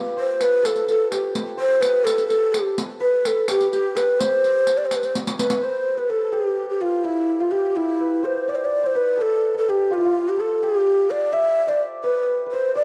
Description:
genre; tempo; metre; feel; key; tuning
Persian modal ensemble; 84 BPM (dotted quarters); 6/8; straight; unclear; A4 = 440 Hz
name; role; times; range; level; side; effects
santur; second line; 0.0-12.8 s; E4 to E5; -30 LUFS; equal; cassette tape
breathy mellow ney; melody; 0.2-12.8 s; E4 to E5; -22 LUFS; equal; cassette tape
riq; percussion; 0.4-5.6 s; none; -31 LUFS; equal; none
room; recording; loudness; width
moderate lush hall reverb, RT60 2.5 s; home recording on cassette; -21 LUFS; mono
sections
0.0-5.6 A section; 5.6-12.8 B section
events
drum fill 5.1-5.6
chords
none

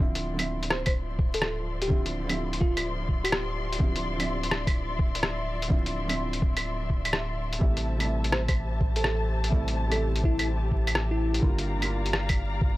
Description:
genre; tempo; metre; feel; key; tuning
future garage; 126 BPM; 4/4; swing 66% on 16ths; D minor; A4 = 438 Hz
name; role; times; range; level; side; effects
felt-muted upright piano; accompaniment; 0.0-12.8 s; C3 to F4; -35 LUFS; right 2 dB; sidechain pumping, analog delay
muted studio string section; sustained chords; 0.0-12.8 s; F3 to C6; -35 LUFS; left 2 dB; sidechain pumping
soft dub sub bass; bass; 0.0-12.8 s; D1 to A1; -30 LUFS; equal; sidechain pumping
electronic kick drum; drums; 0.0-12.7 s; none; -25 LUFS; equal; none
lo-fi sampler-style drum kit; drums; 0.2-12.4 s; claves, hi-hat, rim click; -29 LUFS; equal; none
bell-like FM electric piano; melody; 0.7-3.9, 8.3-11.5 s; E4 to C5; -34 LUFS; equal; chorus, tape echo
room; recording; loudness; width
little or no reverb; dry, gritty hardware recording, vinyl crackle; -25 LUFS; side -17 dB against mid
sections
0.0-12.8 A section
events
none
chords
0.0 Dm9; 7.6 Am7; 11.4 Gm7

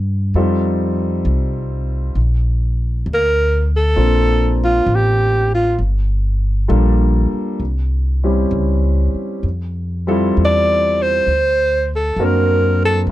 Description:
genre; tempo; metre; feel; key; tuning
jazz ballad; 66 BPM; 4/4; swing 68% on 8ths; F major; A4 = 440 Hz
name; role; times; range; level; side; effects
upright bass; bass; 0.0-13.1 s; G1 to G2; -17 LUFS; equal; none
warm concert grand piano; accompaniment; 0.4-13.1 s; G3 to Bb4; -19 LUFS; equal; none
breathy alto saxophone; melody; 3.1-13.0 s; F4 to D5; -16 LUFS; right 1 dB; none
room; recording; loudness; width
little or no reverb; none; -14 LUFS; side -15 dB against mid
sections
0.0-13.1 A section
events
alto saxophone solo 0.0-13.1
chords
0.3 F9; 2.2 Bbmaj9; 5.8 Gm7; 7.6 C; 9.4 Fmaj7; 11.3 D7b13

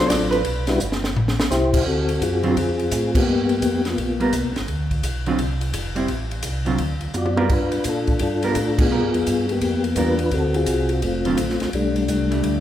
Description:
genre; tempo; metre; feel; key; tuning
soul jazz organ trio; 170 BPM; 4/4; swing 64% on 8ths; unclear; A4 = 441 Hz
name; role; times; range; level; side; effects
percussive tonewheel organ; melody; 0.0-4.5, 7.2-12.6 s; F#3 to D5; -21 LUFS; left 2 dB; slow rotary speaker, chorus vibrato
hollow-body jazz guitar; accompaniment; 0.0-12.6 s; D3 to D5; -25 LUFS; right 2 dB; none
mellow tonewheel organ; bass; 0.0-12.6 s; E#1 to B2; -26 LUFS; equal; chorus vibrato, slow rotary speaker
compact cocktail drum kit; drums; 0.1-12.5 s; crash cymbal, hi-hat, kick drum, ride cymbal, snare drum, toms; -25 LUFS; equal; none
room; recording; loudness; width
moderate recital hall reverb, RT60 1.5 s; recorded in a church or concert hall; -19 LUFS; side -11 dB against mid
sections
0.0-1.9 A section; 1.9-12.6 B section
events
hollow-body jazz guitar solo 0.0-1.9; drum fill 0.8-1.5, 7.1-7.5; band accent 3.1, 8.7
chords
0.5 Em (rootless); 1.2 Am7; 1.9 D7#9; 3.3 G7#9; 4.7 Dm7; 6.1 Am; 6.8 D; 7.5 G7#9; 10.3 D7#9; 11.7 Bm7b13

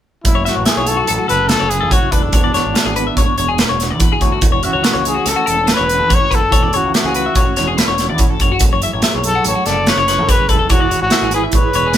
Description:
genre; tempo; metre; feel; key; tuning
math rock and midwest emo; 143 BPM; 5/4; straight; A major; A4 = 440 Hz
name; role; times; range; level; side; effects
breathy trumpet; melody; 0.2-12.0 s; D4 to D5; -17 LUFS; left 2 dB; none
mellow electric guitar; accompaniment; 0.2-12.0 s; F#2 to G#4; -22 LUFS; right 6 dB; tremolo
growling picked electric bass; bass; 0.2-12.0 s; E1 to F#2; -23 LUFS; equal; overdrive
modern studio drum kit; drums; 0.2-12.0 s; hi-hat, kick drum, snare drum; -16 LUFS; right 1 dB; none
twelve-string electric guitar; arpeggios; 0.4-12.0 s; F#4 to E5; -19 LUFS; left 6 dB; none
room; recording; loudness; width
light reverb; band playing live in one room; -12 LUFS; side -10 dB against mid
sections
0.3-12.0 A section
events
none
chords
0.3 F#m7; 2.3 E13; 4.4 A69/E; 8.6 F#m9; 10.7 E69

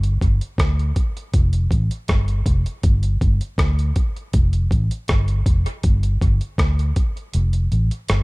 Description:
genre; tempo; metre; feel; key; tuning
dub reggae; 80 BPM; 4/4; straight; unclear; A4 = 436 Hz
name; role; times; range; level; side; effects
vintage muted fingered electric bass; bass; 0.0-8.2 s; F1 to D2; -18 LUFS; equal; none
dusty soul sampler-style drum kit; drums; 0.0-8.2 s; hi-hat, kick drum, rim click; -20 LUFS; equal; overdrive
room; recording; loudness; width
little or no reverb; dark, warm production; -17 LUFS; side -26 dB against mid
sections
0.0-8.2 A section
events
kick muted 7.3-8.2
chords
none

